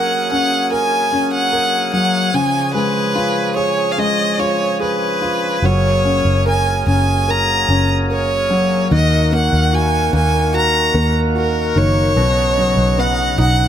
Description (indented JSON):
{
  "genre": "pop ballad",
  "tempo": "74 BPM",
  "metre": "4/4",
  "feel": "straight",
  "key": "F# major",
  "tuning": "A4 = 439 Hz",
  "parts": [
    { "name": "clear violin", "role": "melody", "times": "0.0-13.7 s", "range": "A#4 to A#5", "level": "-18 LUFS", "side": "right 1 dB", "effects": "none" },
    { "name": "warm concert grand piano", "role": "accompaniment", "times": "0.0-13.7 s", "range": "B2 to A#4", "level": "-20 LUFS", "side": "left 2 dB", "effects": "none" },
    { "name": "overdriven tonewheel organ", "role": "sustained chords", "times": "0.0-13.7 s", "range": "C#3 to G#4", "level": "-23 LUFS", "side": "equal", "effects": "slow rotary speaker" },
    { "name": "vintage muted fingered electric bass", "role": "bass", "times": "5.6-13.7 s", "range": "F#1 to D#2", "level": "-18 LUFS", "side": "equal", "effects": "none" }
  ],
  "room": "light reverb, studio reverb",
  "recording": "none",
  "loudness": "-14 LUFS",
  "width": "side -9 dB against mid",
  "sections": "0.0-13.7 A section",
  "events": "none",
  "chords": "0.0 F#add9; 2.3 C#; 5.6 F#add9; 8.9 D#m; 12.2 Badd9",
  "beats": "0.71 1.52 | 2.34 3.15 3.98 4.80 | 5.63 6.46 7.28 8.10 | 8.92 9.73 10.54 11.35 | 12.16 12.98"
}